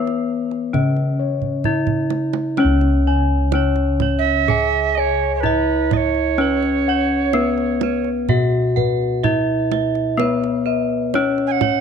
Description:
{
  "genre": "Javanese gamelan",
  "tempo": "63 BPM",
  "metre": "4/4",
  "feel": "straight",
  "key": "C# slendro",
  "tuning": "A4 = 440 Hz",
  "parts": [
    { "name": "gamelan-type bronze metallophone", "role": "melody", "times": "0.0-11.8 s", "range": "B3-25c to G#4", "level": "-21 LUFS", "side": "left 2 dB", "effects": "none" },
    { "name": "gamelan-type bossed gongs", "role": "arpeggios", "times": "0.0-11.7 s", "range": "B4-25c to G#5", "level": "-25 LUFS", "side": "left 14 dB", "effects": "none" },
    { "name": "kendang", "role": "percussion", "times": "0.1-11.8 s", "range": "none", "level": "-24 LUFS", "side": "right 8 dB", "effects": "none" },
    { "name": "gamelan-type bossed gongs", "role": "bass", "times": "0.7-11.8 s", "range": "C#2 to B4-25c", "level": "-22 LUFS", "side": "equal", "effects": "none" },
    { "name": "gamelan-type bronze metallophone", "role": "arpeggios", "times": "2.6-11.8 s", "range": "B4-25c to G#5", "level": "-26 LUFS", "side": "right 15 dB", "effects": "none" },
    { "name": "breathy bright alto recorder", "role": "second line", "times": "4.2-11.8 s", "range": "B4-26c to G#5", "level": "-21 LUFS", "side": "right 15 dB", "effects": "none" }
  ],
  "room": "light reverb, studio ambience",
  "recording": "1960s-style stereo with parts hard left and right",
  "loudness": "-16 LUFS",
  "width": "side -7 dB against mid",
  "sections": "0.0-2.6 A section; 2.6-11.8 B section",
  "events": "drum fill 1.4-2.6",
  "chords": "none"
}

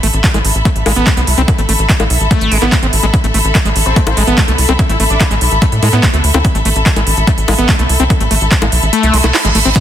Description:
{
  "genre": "psychedelic trance",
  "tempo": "145 BPM",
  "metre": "4/4",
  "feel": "straight",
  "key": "A harmonic minor",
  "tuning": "A4 = 440 Hz",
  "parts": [
    { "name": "screaming distorted acid line", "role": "riff", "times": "0.0-9.7 s", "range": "G#3 to E4", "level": "-18 LUFS", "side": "moving between left 3 dB and right 4 dB", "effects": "distortion, chorus, auto-pan, sidechain pumping, digital delay" },
    { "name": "tight sequencer bass", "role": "bass", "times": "0.0-9.7 s", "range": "A1 to A2", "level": "-14 LUFS", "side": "equal", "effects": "none" },
    { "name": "big-room dance drum kit", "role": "drums", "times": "0.0-9.8 s", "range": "bongos, handclaps, hi-hat", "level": "-17 LUFS", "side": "equal", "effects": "overdrive" },
    { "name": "rich studio string section", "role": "texture", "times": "0.0-9.8 s", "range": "A4 to B5", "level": "-18 LUFS", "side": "left 2 dB", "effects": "sidechain pumping" },
    { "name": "electronic kick drum", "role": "drums", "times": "0.2-9.8 s", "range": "none", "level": "-13 LUFS", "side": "equal", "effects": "overdrive" },
    { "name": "metallic wobble bass", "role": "second line", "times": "3.9-5.3 s", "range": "C4 to E4", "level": "-27 LUFS", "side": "left 3 dB", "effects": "none" },
    { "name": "reverse cymbal", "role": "sound effects", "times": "9.1-9.8 s", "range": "none", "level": "-18 LUFS", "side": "right 6 dB", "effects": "none" },
    { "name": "shekere", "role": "percussion", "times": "9.8 s", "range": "none", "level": "-23 LUFS", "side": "right 4 dB", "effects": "none" }
  ],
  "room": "light reverb, digital ambience",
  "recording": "dense, heavily limited modern master",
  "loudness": "-9 LUFS",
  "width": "side -10 dB against mid",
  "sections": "0.0-9.8 A section",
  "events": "kick drops out 8.9-9.8; reverse cymbal 9.1-9.8",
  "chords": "0.0 A5"
}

